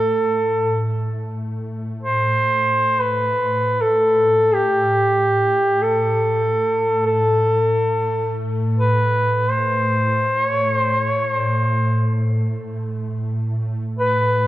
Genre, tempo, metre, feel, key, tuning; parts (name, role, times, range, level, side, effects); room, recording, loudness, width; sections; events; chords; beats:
caucasian folk, Caucasian lament; free time; A minor; A4 = 443 Hz
clear duduk; melody; 0.0-14.5 s; G4 to C5; -18 LUFS; equal
ethereal airy pad; drone; 0.0-14.5 s; A2; -22 LUFS; equal; ensemble chorus, built-in reverb
wet church reverb, RT60 3.2 s; worn, warbling old tape, cassette tape, warbly pitch drift; -17 LUFS; side -15 dB against mid
0.0-1.1 A section; 1.1-14.5 A section
free time